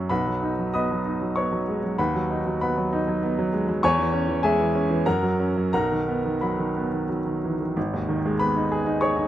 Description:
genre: classical, virtuoso piano study.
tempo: 87-100 BPM.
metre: 3/4.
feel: rubato.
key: B major.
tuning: A4 = 440 Hz.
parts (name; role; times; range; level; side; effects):
clear baby grand piano; solo; 0.0-9.3 s; G#1 to D#6; -22 LUFS; equal; none.
room: little or no reverb.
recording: close, detailed microphones.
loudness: -22 LUFS.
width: side -12 dB against mid.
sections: 0.0-7.8 A section; 7.8-9.3 B section.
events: none.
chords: 0.1 B; 2.0 B/D#; 3.8 C#m/E; 5.1 F#; 5.7 B; 7.8 G#m.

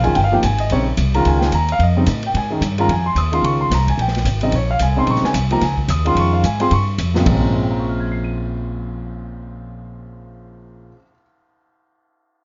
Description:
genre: modal jazz.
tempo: 220 BPM.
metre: 4/4.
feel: swing 59% on 8ths.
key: Bb dorian.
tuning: A4 = 440 Hz.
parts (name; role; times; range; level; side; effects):
warm grand piano; accompaniment; 0.0-11.3 s; Ab2 to Eb7; -22 LUFS; equal; none.
upright bass; bass; 0.0-10.9 s; G1 to A2; -21 LUFS; equal; none.
open jazz drum kit; drums; 0.0-7.3 s; hi-hat, kick drum, ride cymbal, snare drum, toms; -28 LUFS; equal; none.
room: moderate studio reverb, RT60 0.7 s.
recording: nothing above 7.5 kHz.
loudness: -18 LUFS.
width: mono.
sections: 0.0-7.3 A section; 7.3-9.4 B section.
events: none.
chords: 0.0 Bbm9.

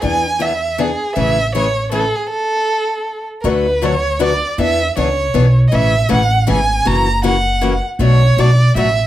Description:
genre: acoustic string swing (jazz manouche).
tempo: 158 BPM.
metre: 3/4.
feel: swing 61% on 8ths.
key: A major.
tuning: A4 = 440 Hz.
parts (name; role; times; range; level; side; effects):
warm violin; melody; 0.0-9.1 s; G#4 to A#5; -17 LUFS; right 2 dB; none.
picked steel-string acoustic guitar; accompaniment; 0.0-8.9 s; B2 to B4; -18 LUFS; left 4 dB; none.
upright bass; bass; 0.0-9.1 s; F#1 to E2; -16 LUFS; equal; none.
room: wet studio reverb, RT60 0.5 s.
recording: heard from further back in the room.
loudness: -13 LUFS.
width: side -13 dB against mid.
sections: 0.0-3.4 A section; 3.4-9.1 B section.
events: stop 2.3-3.4.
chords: 0.0 E7; 1.2 Amaj7; 3.4 D6; 4.6 E6; 5.7 Amaj7; 6.9 F#7; 8.0 Bm7.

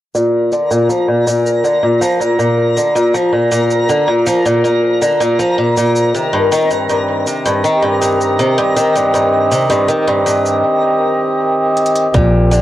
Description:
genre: folktronica.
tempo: 80 BPM.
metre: 4/4.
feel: straight.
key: unclear.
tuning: A4 = 444 Hz.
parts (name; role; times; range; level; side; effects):
picked swing-style acoustic guitar; arpeggios; 0.1-12.6 s; G2 to F3; -13 LUFS; equal; low-pass filter, analog delay, plate reverb.
twinkling granular texture; texture; 0.4-10.6 s; Bb4 to Bb5; -22 LUFS; left 2 dB; built-in reverb, plate reverb.
electronic shaker and hi-hat; drums; 0.2-12.6 s; none; -27 LUFS; equal; overdrive, cassette tape.
mellow accordion; sustained chords; 6.1-12.6 s; Bb2 to Eb5; -15 LUFS; equal; plate reverb.
upright bass; bass; 12.1-12.6 s; Bb1; -11 LUFS; equal; tube saturation.
electronic kick drum; drums; 12.1-12.3 s; none; -14 LUFS; equal; overdrive, cassette tape.
room: moderate booth ambience, RT60 0.2 s.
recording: home recording on cassette.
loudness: -11 LUFS.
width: side -14 dB against mid.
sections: 0.1-12.1 A section.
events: filter sweep on steel-string acoustic guitar 0.1-12.1; drum fill 11.8-12.1.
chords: 0.1 Bb; 6.1 Eb6.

